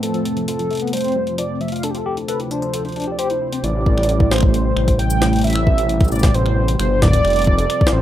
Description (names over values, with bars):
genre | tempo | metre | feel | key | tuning
IDM | 133 BPM | 4/4 | straight | A minor | A4 = 439 Hz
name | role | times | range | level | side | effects
warm velvety synth lead | melody | 0.0-8.0 s | G4 to G5 | -22 LUFS | right 1 dB | chorus, digital delay
warbly tape-like pad | sustained chords | 0.0-8.0 s | D2 to A4 | -24 LUFS | right 1 dB | chorus, built-in reverb
mellow tine electric piano | arpeggios | 0.0-3.6 s | F3 to A4 | -26 LUFS | left 4 dB | medium tremolo, vintage 12-bit sampler grit, digital delay
jungle sampler-style drum kit | drums | 0.0-8.0 s | cabasa, finger snaps, hi-hat, snare drum | -26 LUFS | left 1 dB | none
dark detuned saw bass | bass | 3.6-8.0 s | F1 to A1 | -18 LUFS | equal | none
electronic kick drum | drums | 3.9-7.9 s | none | -16 LUFS | equal | none
room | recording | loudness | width
light reverb | rough home demo mix | -15 LUFS | side -12 dB against mid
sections
0.0-3.6 A section; 3.6-8.0 B section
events
none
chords
0.0 F; 1.8 Dm7; 3.6 Am7; 7.2 F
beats
| 0.03 0.48 0.93 1.38 | 1.83 2.29 2.74 3.19 | 3.64 4.09 4.54 4.99 | 5.44 5.89 6.34 6.80 | 7.25 7.70